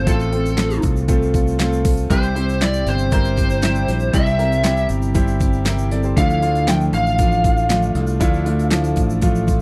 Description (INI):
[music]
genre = piano-driven pop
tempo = 118 BPM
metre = 4/4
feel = straight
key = unclear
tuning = A4 = 442 Hz
[part]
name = lead guitar through a small cranked amp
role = melody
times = 0.0-9.6 s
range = A4 to G5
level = -25 LUFS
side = equal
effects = overdrive
[part]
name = clear concert grand piano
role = accompaniment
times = 0.0-9.6 s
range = A2 to E5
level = -26 LUFS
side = equal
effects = none
[part]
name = picked steel-string acoustic guitar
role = riff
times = 0.0-9.6 s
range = C3 to A4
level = -28 LUFS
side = equal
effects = none
[part]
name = fingered electric bass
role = bass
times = 0.0-9.6 s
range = G1 to D2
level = -23 LUFS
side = equal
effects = none
[part]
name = pop drum kit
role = drums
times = 0.1-9.6 s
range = handclaps, hi-hat, kick drum, snare drum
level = -22 LUFS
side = equal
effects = none
[part]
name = egg shaker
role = percussion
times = 0.1-9.6 s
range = none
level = -43 LUFS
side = equal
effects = none
[sound]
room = little or no reverb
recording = dry, close 1970s-style studio recording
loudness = -18 LUFS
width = mono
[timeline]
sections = 0.0-9.6 A section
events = none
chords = 0.0 F; 2.1 C; 6.2 Dmadd9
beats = | 0.07 0.58 1.09 1.59 | 2.10 2.61 3.12 3.63 | 4.14 4.64 5.15 5.66 | 6.17 6.68 7.19 7.70 | 8.21 8.71 9.22